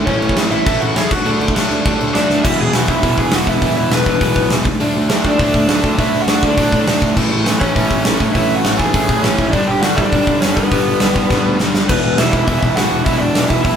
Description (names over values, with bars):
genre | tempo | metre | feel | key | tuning
punk rock | 203 BPM | 4/4 | straight | unclear | A4 = 439 Hz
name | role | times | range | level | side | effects
overdriven semi-hollow guitar | riff | 0.0-13.8 s | E2 to D4 | -18 LUFS | right 1 dB | none
lead guitar through a small cranked amp | melody | 0.1-13.8 s | B3 to G#5 | -18 LUFS | equal | overdrive
fuzz picked electric bass | bass | 0.1-13.8 s | E1 to A2 | -21 LUFS | equal | overdrive
big rock drum kit | drums | 0.1-13.7 s | crash cymbal, hi-hat, kick drum, snare drum | -17 LUFS | equal | none
room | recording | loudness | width
light reverb | band playing live in one room | -12 LUFS | side -8 dB against mid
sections
0.0-2.4 A section; 2.4-11.9 B section; 11.9-13.8 C section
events
drum fill 2.3, 11.3-11.9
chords
0.1 A; 1.1 D; 2.4 E; 4.7 D5; 7.2 A; 9.5 G; 11.9 E5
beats
| 0.07 0.37 0.66 0.96 | 1.26 1.55 1.85 2.15 | 2.44 2.74 3.03 3.33 | 3.62 3.92 4.21 4.51 | 4.80 5.10 5.40 5.69 | 5.99 6.28 6.58 6.87 | 7.17 7.46 7.76 8.06 | 8.35 8.65 8.94 9.24 | 9.53 9.83 10.12 10.42 | 10.71 11.01 11.30 11.60 | 11.89 12.18 12.48 12.77 | 13.06 13.36 13.65